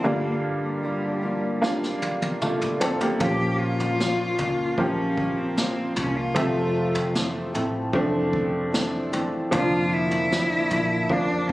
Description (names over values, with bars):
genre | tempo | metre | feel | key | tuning
pop ballad | 76 BPM | 4/4 | straight | unclear | A4 = 440 Hz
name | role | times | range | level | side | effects
rich cello | melody | 0.0-11.5 s | G3 to G4 | -26 LUFS | left 1 dB | none
bright upright piano | accompaniment | 0.0-11.5 s | G2 to E5 | -26 LUFS | right 1 dB | none
fingerpicked steel-string acoustic guitar | arpeggios | 0.0-11.5 s | F2 to A4 | -29 LUFS | left 1 dB | none
vintage brush drum kit | drums | 1.6-11.5 s | kick drum, snare drum, toms | -29 LUFS | equal | none
vintage muted fingered electric bass | bass | 3.2-11.5 s | F1 to Db2 | -33 LUFS | equal | none
room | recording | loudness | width
little or no reverb | recorded on a phone in the room, club reverb, faint mains hum | -22 LUFS | side -17 dB against mid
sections
0.0-11.5 A section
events
drum fill 1.6-3.2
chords
0.0 Gm7; 3.2 Bbm; 6.4 Fmaj7; 9.5 Bb/F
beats
| 0.05 0.83 1.62 2.41 | 3.20 3.99 4.78 5.57 | 6.36 7.15 7.94 8.73 | 9.52 10.31 11.10